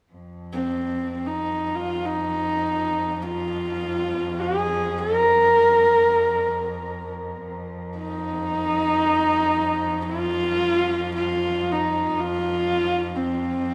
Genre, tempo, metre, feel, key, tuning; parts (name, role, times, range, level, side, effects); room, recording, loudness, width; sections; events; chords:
mongolian traditional, Mongolian folk; free time; F yu mode; A4 = 441 Hz
muted cello; drone; 0.1-13.7 s; F2; -34 LUFS; equal
dark horsehead fiddle; melody; 0.5-13.7 s; C4 to Bb4; -23 LUFS; equal
moderate huge ambient reverb, RT60 7.4 s; small room ambience; -23 LUFS; mono
0.1-13.7 A section